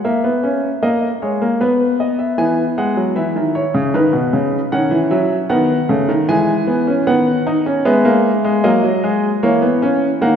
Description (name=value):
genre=classical, baroque-style 3-part fugue for grand piano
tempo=77 BPM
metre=3/4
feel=straight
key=unclear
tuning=A4 = 440 Hz
part: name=warm grand piano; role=solo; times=0.0-10.4 s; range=B2 to G#5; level=-14 LUFS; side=equal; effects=none
room=wet concert hall reverb, RT60 2.3 s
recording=heard from further back in the room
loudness=-14 LUFS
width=side -8 dB against mid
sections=0.0-10.4 A section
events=none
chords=0.0 C#m13; 1.6 B; 2.4 E; 3.9 B; 4.7 B7/D#; 6.3 E; 7.1 B/D#; 8.7 F#; 9.4 F#7/E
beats=| 0.04 0.82 1.60 | 2.38 3.17 3.95 | 4.73 5.52 6.30 | 7.09 7.87 8.65 | 9.44 10.23